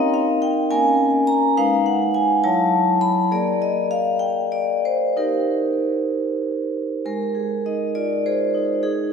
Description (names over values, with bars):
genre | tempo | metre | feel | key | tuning
classical, contemporary piece for solo vibraphone | 63-71 BPM (dotted quarters) | 6/8 | rubato | unclear | A4 = 440 Hz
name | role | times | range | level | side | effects
vibraphone with medium hard mallets | solo | 0.0-9.1 s | Gb3 to Cb6 | -18 LUFS | equal | none
room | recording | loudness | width
wet concert hall reverb, RT60 2.4 s | recorded in a church or concert hall | -18 LUFS | side -6 dB against mid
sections
0.0-7.1 A section; 7.1-9.1 B section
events
none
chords
0.0 Cm7; 0.7 Bbm7; 1.6 Abm; 2.4 Gbm7; 3.3 Bb13; 5.2 Eb6; 7.1 Abadd9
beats
0.71 | 1.57 2.43 | 3.31 4.22 | 5.17 6.11 | 7.05 7.94 | 8.82